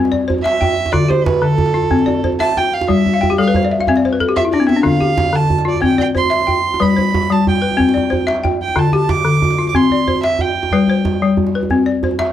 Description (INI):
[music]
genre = west african traditional, West African string and xylophone music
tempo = 123 BPM (dotted quarters)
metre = 12/8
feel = straight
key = unclear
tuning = A4 = 440 Hz
[part]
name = balafon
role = arpeggios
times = 0.0-12.3 s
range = D3 to G5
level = -15 LUFS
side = left 4 dB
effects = none
[part]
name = djembe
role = percussion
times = 0.0-12.3 s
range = none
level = -20 LUFS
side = right 4 dB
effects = none
[part]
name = rich violin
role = melody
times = 0.4-11.2 s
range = A4 to D6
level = -19 LUFS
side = right 5 dB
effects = none
[sound]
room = small room ambience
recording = dry, close 1970s-style studio recording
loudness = -13 LUFS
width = side -11 dB against mid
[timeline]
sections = 0.0-12.3 A section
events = violin solo 0.0-12.3; balafon fill 3.1-4.8; drum fill 4.0-4.8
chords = 0.0 C; 0.9 Dm; 1.9 C; 2.9 N.C.; 3.9 C; 4.8 Dm; 5.8 C; 6.8 G; 7.8 C; 8.8 Dm; 9.7 C; 10.7 G; 11.7 C